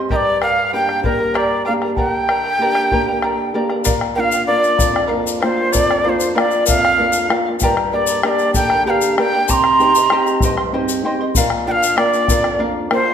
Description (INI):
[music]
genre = andean folk, Andean ensemble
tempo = 64 BPM (dotted quarters)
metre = 6/8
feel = straight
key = unclear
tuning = A4 = 441 Hz
[part]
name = charango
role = accompaniment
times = 0.0-13.1 s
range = G4 to C6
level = -22 LUFS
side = equal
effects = none
[part]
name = nylon-string guitar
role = accompaniment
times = 0.0-13.1 s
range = F2 to G4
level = -21 LUFS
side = equal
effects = none
[part]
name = breathy bright quena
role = melody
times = 0.1-13.1 s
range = Bb4 to Bb5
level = -18 LUFS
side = equal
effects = none
[part]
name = breathy large quena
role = second line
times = 0.1-13.1 s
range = Bb4 to D6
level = -22 LUFS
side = right 4 dB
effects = none
[part]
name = bombo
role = percussion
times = 0.1-13.1 s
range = none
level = -22 LUFS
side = left 2 dB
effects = none
[part]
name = tube shaker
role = percussion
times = 3.8-12.4 s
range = none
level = -24 LUFS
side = left 7 dB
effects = none
[sound]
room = wet recital hall reverb, RT60 1.4 s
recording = none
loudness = -14 LUFS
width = side -8 dB against mid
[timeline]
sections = 0.0-3.9 A section; 3.9-13.1 B section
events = none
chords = 0.1 Gm; 3.9 Bb; 7.6 Gm; 9.5 Cm; 11.4 Bb